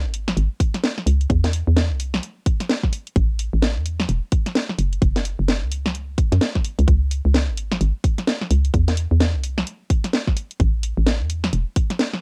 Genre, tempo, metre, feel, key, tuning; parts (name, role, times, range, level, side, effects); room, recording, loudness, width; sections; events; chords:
UK garage, two-step garage; 129 BPM; 4/4; swing 61% on 16ths; A4 = 437 Hz
hollow knocking FM bass; bass; 0.0-11.6 s; E1 to F#2; -22 LUFS; equal
garage drum kit; drums; 0.1-12.2 s; hi-hat, snare drum; -25 LUFS; equal; cassette tape
electronic kick drum; drums; 0.6-11.9 s; -21 LUFS; equal; cassette tape
little or no reverb; home recording on cassette; -21 LUFS; mono
0.0-12.2 A section